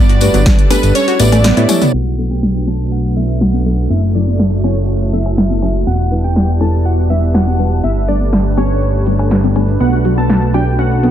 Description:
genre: progressive house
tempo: 122 BPM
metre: 4/4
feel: straight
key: B minor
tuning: A4 = 440 Hz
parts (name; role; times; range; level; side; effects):
- plucky unison lead; melody; 0.0-11.1 s; B4 to A5; -22 LUFS; equal; sidechain pumping, tape echo
- supersaw pad; sustained chords; 0.0-11.1 s; F#3 to E5; -20 LUFS; right 1 dB; sidechain pumping, low-pass filter
- wide unison pluck; arpeggios; 0.0-1.8, 9.8-11.1 s; F#3 to F#4; -18 LUFS; right 2 dB; sidechain pumping, ping-pong delay
- fat analog bass; bass; 0.0-11.1 s; E1 to A2; -14 LUFS; equal; sidechain pumping
- backwards swelling texture; texture; 0.0-11.1 s; A5 to F#6; -35 LUFS; left 1 dB; built-in reverb, sidechain pumping
- deep house drum kit; drums; 0.1-11.1 s; hi-hat, snare drum, toms; -18 LUFS; equal; overdrive, sidechain pumping on hats, sidechain pumping on toms
- deep mellow chord stab; stabs; 0.2-11.1 s; F#3 to C#5; -21 LUFS; left 2 dB; chorus, sidechain pumping
- tambourine; percussion; 0.2-1.9 s; none; -25 LUFS; left 3 dB; none
- congas and cowbell; percussion; 0.3-11.1 s; none; -24 LUFS; left 2 dB; sidechain pumping on perc
- electronic kick drum; drums; 0.5-0.6 s; none; -11 LUFS; equal; none
- downlifter; sound effects; 2.3-5.9 s; none; -35 LUFS; equal; none
room: light reverb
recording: low-pass filter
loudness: -11 LUFS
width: side -10 dB against mid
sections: 0.0-1.9 A section; 1.9-11.1 B section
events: drop 0.0-1.9; kick drops out 1.0-1.9; drum fill 1.7; filter sweep on synth stab 1.9-11.1; filter sweep 1.9-11.1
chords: 0.0 Gadd9; 1.0 A7; 1.9 Bm7; 3.9 F#m7; 5.9 Em7; 7.8 Gadd9; 9.8 Bm7

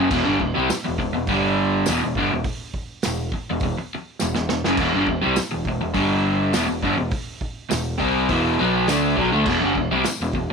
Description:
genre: garage rock duo or trio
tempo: 103 BPM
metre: 4/4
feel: straight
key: E minor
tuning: A4 = 436 Hz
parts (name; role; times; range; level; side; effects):
- crunchy overdriven guitar; riff; 0.0-10.5 s; E2 to D4; -20 LUFS; equal; none
- growling picked electric bass; bass; 0.0-10.5 s; E1 to D2; -28 LUFS; left 1 dB; overdrive
- vintage drum kit; drums; 0.1-10.5 s; crash cymbal, hi-hat, kick drum, snare drum; -28 LUFS; right 3 dB; none
- tambourine; percussion; 0.7-10.2 s; none; -33 LUFS; left 18 dB; none
room: little or no reverb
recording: 1960s-style stereo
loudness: -19 LUFS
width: side -5 dB against mid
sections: 0.0-10.5 A section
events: drum fill 4.2-4.8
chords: 0.0 Em; 1.3 G5; 1.9 Em; 6.0 G5; 6.5 Em

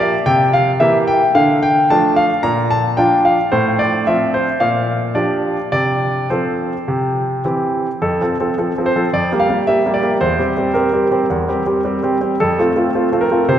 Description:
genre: classical-period piano sonatina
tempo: 110 BPM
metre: 4/4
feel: rubato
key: F major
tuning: A4 = 440 Hz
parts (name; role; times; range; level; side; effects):
- bright concert grand piano; solo; 0.0-13.6 s; E2 to Bb5; -14 LUFS; equal; none
room: wet church reverb, RT60 3.6 s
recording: recorded in a church or concert hall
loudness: -14 LUFS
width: side -10 dB against mid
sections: 0.0-8.0 A section; 8.0-13.6 B section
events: none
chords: 0.3 C7; 1.4 Dm; 2.4 Bb; 3.5 F/A; 4.6 Gm7/Bb; 5.7 F/C; 6.9 C; 8.0 F; 9.1 Gm7/F; 10.2 C7/E; 12.4 F

